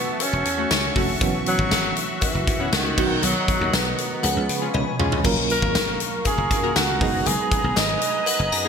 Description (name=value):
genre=1980s-style pop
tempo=119 BPM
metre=4/4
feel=straight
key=B major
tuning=A4 = 442 Hz
part: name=warm alto saxophone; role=melody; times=0.0-8.7 s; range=D#3 to Eb5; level=-25 LUFS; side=right 1 dB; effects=ping-pong delay
part: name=FM electric piano with tremolo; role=accompaniment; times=0.0-8.7 s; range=D#3 to A#4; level=-29 LUFS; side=right 4 dB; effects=none
part: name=sweeping resonant pad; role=sustained chords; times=0.0-8.7 s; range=E#3 to Eb6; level=-29 LUFS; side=left 1 dB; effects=chorus
part: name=big rock drum kit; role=drums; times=0.2-8.6 s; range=crash cymbal, hi-hat, kick drum, snare drum, tambourine, toms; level=-23 LUFS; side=left 1 dB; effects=none
part: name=cowbell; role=percussion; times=0.2-8.4 s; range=none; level=-38 LUFS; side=left 9 dB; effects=none
part: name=dry thumbed slap bass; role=bass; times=0.3-8.7 s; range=E1 to C#3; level=-27 LUFS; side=equal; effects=none
part: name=funky polysynth comp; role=stabs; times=0.6-8.7 s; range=A3 to Bb4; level=-31 LUFS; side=left 1 dB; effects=none
part: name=glassy synth bell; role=second line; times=4.2-5.2, 8.3-8.7 s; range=D#5 to Bb5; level=-29 LUFS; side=left 3 dB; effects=chorus, phaser, ping-pong delay
room=moderate plate reverb, RT60 2.6 s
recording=bright 1980s-style digital production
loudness=-19 LUFS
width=side -6 dB against mid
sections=0.0-5.2 A section; 5.2-8.7 A section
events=drum fill 4.7-5.2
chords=0.0 A6/E; 1.2 F#7sus4; 3.0 Bmaj7; 4.2 C#7; 5.2 Gbmaj7; 7.0 Cb6/Gb